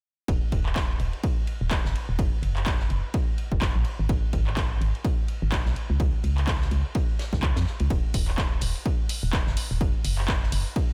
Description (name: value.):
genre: piano house.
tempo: 126 BPM.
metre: 4/4.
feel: swing 58% on 16ths.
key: Eb minor.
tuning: A4 = 441 Hz.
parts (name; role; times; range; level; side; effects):
organ-like FM bass; bass; 0.3-10.6 s; Eb1 to F2; -28 LUFS; equal; tube saturation, sidechain pumping.
electronic kick drum; drums; 0.3-10.9 s; none; -28 LUFS; equal; none.
loose indie drum kit; drums; 0.3-10.9 s; ride cymbal, snare drum; -45 LUFS; equal; sidechain pumping on cymbals, high-pass filter on cymbals, high-pass filter on snare, high-pass filter on room.
punchy analog drum machine; drums; 0.7-10.6 s; handclaps, hi-hat; -35 LUFS; equal; none.
room: little or no reverb.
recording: none.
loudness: -26 LUFS.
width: mono.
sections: 0.3-10.9 A section.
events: none.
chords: none.